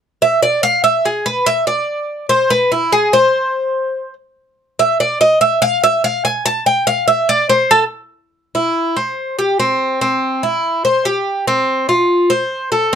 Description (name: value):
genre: latin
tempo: 144 BPM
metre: 4/4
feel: straight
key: unclear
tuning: A4 = 442 Hz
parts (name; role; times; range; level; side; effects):
- Cuban tres; solo; 0.2-13.0 s; C4 to A5; -13 LUFS; equal; none
room: light reverb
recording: dark, warm production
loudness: -13 LUFS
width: side -8 dB against mid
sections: 0.0-8.3 A section; 8.3-13.0 B section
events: Cuban tres solo 0.0-8.3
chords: none